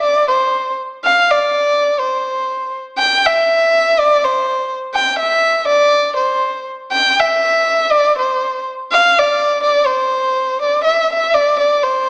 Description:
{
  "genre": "mexican folk",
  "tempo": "122 BPM",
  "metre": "2/4",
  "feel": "swing 55% on 8ths",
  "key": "C major",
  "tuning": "A4 = 440 Hz",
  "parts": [
    { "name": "dark violin", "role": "solo", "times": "0.0-12.1 s", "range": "C5 to G5", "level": "-12 LUFS", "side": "equal", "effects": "none" }
  ],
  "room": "moderate recital hall reverb, RT60 1.4 s",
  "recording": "small speaker sound",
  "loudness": "-12 LUFS",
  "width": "side -30 dB against mid",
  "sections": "0.0-3.0 A section; 3.0-10.8 A section; 10.8-12.1 B section",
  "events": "none",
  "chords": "none"
}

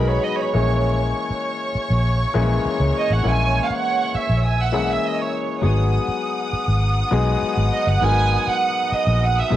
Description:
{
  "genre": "soul",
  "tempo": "100 BPM",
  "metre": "4/4",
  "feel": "straight",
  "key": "G# minor",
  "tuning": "A4 = 440 Hz",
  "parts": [
    { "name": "warm studio violin section", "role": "melody", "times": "0.0-9.6 s", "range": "A#4 to G#5", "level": "-22 LUFS", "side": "right 6 dB", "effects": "cassette tape" },
    { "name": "warm studio violin section", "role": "second line", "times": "0.0-9.6 s", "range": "B3 to E6", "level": "-26 LUFS", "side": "right 1 dB", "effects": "cassette tape" },
    { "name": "warm grand piano", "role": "accompaniment", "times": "0.0-9.6 s", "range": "E3 to B4", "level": "-24 LUFS", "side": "left 7 dB", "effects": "cassette tape" },
    { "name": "vintage muted fingered electric bass", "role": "bass", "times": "0.0-9.6 s", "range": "G1 to C#2", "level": "-19 LUFS", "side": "equal", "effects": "none" }
  ],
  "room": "light reverb",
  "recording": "home recording on cassette",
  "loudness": "-18 LUFS",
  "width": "side -12 dB against mid",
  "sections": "0.0-9.6 A section",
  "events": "violin section solo 0.0-9.6",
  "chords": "0.0 G#m7; 0.5 A#m7b5; 5.6 G#m7"
}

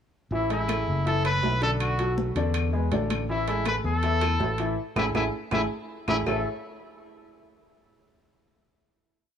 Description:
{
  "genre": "latin, salsa",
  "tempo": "161 BPM",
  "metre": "4/4",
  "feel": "straight",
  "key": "A major",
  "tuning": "A4 = 440 Hz",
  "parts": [
    { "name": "bright trumpet", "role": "melody", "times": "0.3-6.4 s", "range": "E4 to B4", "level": "-29 LUFS", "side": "equal", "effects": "none" },
    { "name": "warm grand piano", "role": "accompaniment", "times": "0.3-6.4 s", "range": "D3 to E5", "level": "-30 LUFS", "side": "left 1 dB", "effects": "none" },
    { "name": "fingered electric bass", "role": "bass", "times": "0.3-6.4 s", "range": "F#1 to E2", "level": "-28 LUFS", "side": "left 1 dB", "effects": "none" },
    { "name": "congas", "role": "percussion", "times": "0.3-6.4 s", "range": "none", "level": "-35 LUFS", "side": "left 2 dB", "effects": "none" },
    { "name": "timbales", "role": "percussion", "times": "0.5-6.4 s", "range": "none", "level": "-35 LUFS", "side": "right 5 dB", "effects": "none" },
    { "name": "claves", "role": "percussion", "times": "0.7-6.4 s", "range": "none", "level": "-36 LUFS", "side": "left 9 dB", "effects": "none" }
  ],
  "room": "light reverb",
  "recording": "none",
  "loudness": "-24 LUFS",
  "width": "side -8 dB against mid",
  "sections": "0.3-6.3 A section; 6.3-7.8 final chord",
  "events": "band accent 4.8-6.3; drum fill 5.7-6.3",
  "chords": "0.3 A5; 1.1 F#m7; 1.8 Bm7; 2.5 E7; 3.3 A5; 6.3 Amaj7"
}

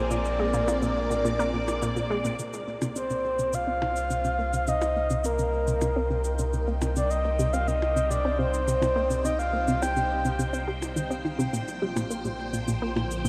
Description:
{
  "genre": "ambient, sequencer-driven space music",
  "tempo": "105 BPM",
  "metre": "4/4",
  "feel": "straight",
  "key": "C minor",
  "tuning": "A4 = 440 Hz",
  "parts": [
    { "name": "breathy flute-like synth lead", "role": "melody", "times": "0.0-10.4 s", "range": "Bb4 to G5", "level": "-30 LUFS", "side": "equal", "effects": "chorus, tape echo" },
    { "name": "phased string machine", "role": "sustained chords", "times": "0.0-13.3 s", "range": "Bb2 to G5", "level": "-37 LUFS", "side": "equal", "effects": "ensemble chorus, phaser" },
    { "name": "warm sub bass", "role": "bass", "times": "0.0-13.3 s", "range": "Bb1 to C2", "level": "-34 LUFS", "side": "equal", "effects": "none" },
    { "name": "analog pluck", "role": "riff", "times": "0.1-13.3 s", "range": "Bb2 to G4", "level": "-33 LUFS", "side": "equal", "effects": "chorus, tape echo" },
    { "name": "cabasa and percussion blips", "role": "percussion", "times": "0.1-13.3 s", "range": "none", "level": "-40 LUFS", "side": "equal", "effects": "overdrive, tape echo" },
    { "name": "bubbling stepped-filter texture", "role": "texture", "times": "5.8-13.3 s", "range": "G5", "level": "-47 LUFS", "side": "equal", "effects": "chorus, built-in reverb" }
  ],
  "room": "wet huge ambient reverb, RT60 7.0 s",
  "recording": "cassette tape",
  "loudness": "-27 LUFS",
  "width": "mono",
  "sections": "0.0-2.4 A section; 2.4-13.3 B section",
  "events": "fade-in on string machine 2.4-13.3; fade-in on synth texture 2.4-13.3; filter sweep on synth arpeggio sound 2.4-13.3",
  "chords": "0.0 Bb7; 2.4 Cm; 11.5 Bb6"
}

